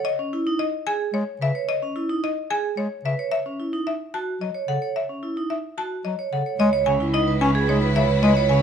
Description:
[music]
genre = classical, minimalist pattern music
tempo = 110 BPM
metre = 3/4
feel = straight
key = C# minor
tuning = A4 = 440 Hz
[part]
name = buzzing marimba with hard mallets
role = melody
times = 0.0-8.6 s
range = C#5 to A5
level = -27 LUFS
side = left 6 dB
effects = none
[part]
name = vibraphone with medium hard mallets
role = arpeggios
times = 0.0-8.6 s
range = C#4 to C#5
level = -25 LUFS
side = right 5 dB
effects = none
[part]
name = warm bass clarinet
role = accompaniment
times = 1.1-8.6 s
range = C#3 to C#4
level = -23 LUFS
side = left 1 dB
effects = none
[part]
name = rich symphonic string section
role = sustained chords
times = 6.6-8.6 s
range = E4 to B4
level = -30 LUFS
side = left 6 dB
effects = none
[part]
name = rich cello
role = bass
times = 6.6-8.6 s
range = C#2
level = -22 LUFS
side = right 1 dB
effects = none
[sound]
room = light reverb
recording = close, detailed microphones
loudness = -21 LUFS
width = side -8 dB against mid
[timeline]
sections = 0.0-6.6 A section; 6.6-8.6 A section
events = none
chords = 0.0 C#m7; 3.3 F#7(no3); 6.6 C#m7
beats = | 0.05 0.59 1.14 | 1.68 2.23 2.77 | 3.32 3.87 4.41 | 4.96 5.50 6.05 | 6.59 7.14 7.68 | 8.23

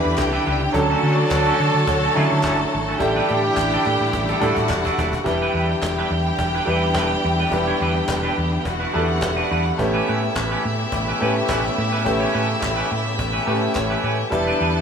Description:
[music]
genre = disco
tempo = 106 BPM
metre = 4/4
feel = straight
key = E dorian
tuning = A4 = 441 Hz
[part]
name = bright studio violin section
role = second line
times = 0.0-14.8 s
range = E4 to B5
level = -25 LUFS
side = right 2 dB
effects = none
[part]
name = clear grand piano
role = accompaniment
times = 0.0-14.8 s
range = F#3 to C#5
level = -24 LUFS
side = left 1 dB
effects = none
[part]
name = clear studio string section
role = sustained chords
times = 0.0-14.8 s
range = C#3 to C#5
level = -26 LUFS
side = left 1 dB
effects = none
[part]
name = warm horn section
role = stabs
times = 0.0-4.9 s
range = E3 to B4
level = -24 LUFS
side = right 1 dB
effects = none
[part]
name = clean electric guitar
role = accompaniment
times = 0.1-14.8 s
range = G3 to C#5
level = -27 LUFS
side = right 2 dB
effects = none
[part]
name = hollow-body short-scale fingered electric bass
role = bass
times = 0.1-14.8 s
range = D#1 to D3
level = -24 LUFS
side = equal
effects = none
[part]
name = cajon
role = drums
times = 0.1-14.8 s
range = none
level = -30 LUFS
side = equal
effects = none
[part]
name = group handclap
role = percussion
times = 0.2-13.9 s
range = none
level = -34 LUFS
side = left 1 dB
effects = none
[sound]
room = wet stone room reverb, RT60 1.1 s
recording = band playing live in one room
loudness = -18 LUFS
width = side -7 dB against mid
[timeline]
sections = 0.0-5.3 A section; 5.3-14.8 B section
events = drum fill 3.0-5.3; grand piano fill 13.5-14.3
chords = 0.0 Em7; 0.7 Dmaj7; 3.0 A7sus4; 5.3 Em7; 9.8 A9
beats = 0.18 | 0.75 1.31 1.87 2.44 | 3.00 3.57 4.13 4.70 | 5.26 5.83 6.39 6.96 | 7.53 8.09 8.66 9.22 | 9.79 10.36 10.92 11.49 | 12.05 12.62 13.19 13.75 | 14.32

